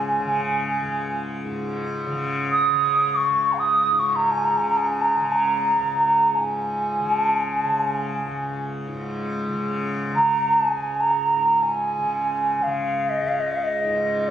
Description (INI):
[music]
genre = indian classical, Hindustani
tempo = free time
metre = none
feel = none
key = Db raga bhupali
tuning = A4 = 441 Hz
[part]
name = mellow bansuri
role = melody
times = 0.0-14.3 s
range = Eb5 to Eb6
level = -20 LUFS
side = right 1 dB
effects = none
[part]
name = tanpura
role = drone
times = 0.0-14.3 s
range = Db2 to Db3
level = -28 LUFS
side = left 1 dB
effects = none
[sound]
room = wet recital hall reverb, RT60 1.6 s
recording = recorded on a phone in the room, club reverb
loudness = -20 LUFS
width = side -10 dB against mid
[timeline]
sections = 0.0-14.3 A section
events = none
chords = none